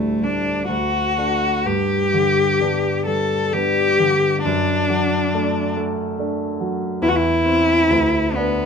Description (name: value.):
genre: classical, romantic duo for cello and grand piano.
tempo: 60-72 BPM.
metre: 3/4.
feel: rubato.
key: G major.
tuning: A4 = 440 Hz.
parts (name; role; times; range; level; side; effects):
rich cello; melody; 0.0-8.7 s; A3 to A4; -18 LUFS; left 2 dB; none.
warm grand piano; accompaniment; 0.0-8.7 s; D2 to D4; -22 LUFS; right 1 dB; none.
room: light reverb.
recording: minimal, uncompressed stereo recording.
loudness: -17 LUFS.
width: side -6 dB against mid.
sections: 0.0-8.7 A section.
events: none.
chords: 0.0 Dsus4; 0.7 D; 1.7 G; 4.5 D/F#; 7.0 C/E; 7.9 Bmadd11/D.